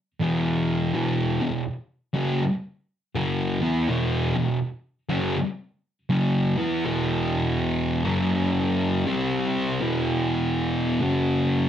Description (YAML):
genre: metal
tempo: 81 BPM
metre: 4/4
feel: swing 63% on 8ths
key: E minor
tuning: A4 = 439 Hz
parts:
  - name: thick fuzz guitar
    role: solo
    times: 0.2-11.7 s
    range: E2 to E4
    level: -22 LUFS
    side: equal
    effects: distortion, slapback echo
room: wet studio ambience, RT60 0.5 s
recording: none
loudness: -22 LUFS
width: side -10 dB against mid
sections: 0.0-6.8 A section; 6.8-11.7 B section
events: none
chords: 0.0 E5; 8.0 F#5; 9.1 C5; 9.8 E5; 10.9 F#5